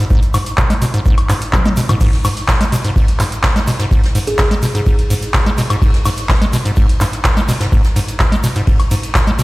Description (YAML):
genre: acid house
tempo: 126 BPM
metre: 4/4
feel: straight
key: G# minor pentatonic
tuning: A4 = 440 Hz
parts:
  - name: acid bass, square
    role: riff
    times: 0.0-9.4 s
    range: G#2 to G#3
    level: -17 LUFS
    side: equal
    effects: dub echo
  - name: electronic kick drum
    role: drums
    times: 0.1-9.2 s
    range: none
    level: -15 LUFS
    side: equal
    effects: overdrive
  - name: egg shaker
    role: percussion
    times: 0.1-9.4 s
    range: none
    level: -34 LUFS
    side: right 2 dB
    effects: none
  - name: electro analog drum machine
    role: drums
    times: 0.2-9.4 s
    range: crash cymbal, handclaps, hi-hat, toms, woodblock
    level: -20 LUFS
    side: equal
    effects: none
  - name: jazz brush drum kit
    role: drums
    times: 2.0-9.4 s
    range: hi-hat, ride cymbal, snare drum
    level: -30 LUFS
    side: left 2 dB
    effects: high-pass filter on cymbals, high-pass filter on hats, high-pass filter on snare, high-pass filter on room
  - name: kalimba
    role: melody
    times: 4.3-4.5 s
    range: G#4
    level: -23 LUFS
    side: equal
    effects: digital delay
room: light reverb, small room ambience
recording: played on a big sound system in a bare room, stone room reverb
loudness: -12 LUFS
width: side -20 dB against mid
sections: 0.0-9.4 A section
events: drum fill 1.5-2.0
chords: 0.0 G#m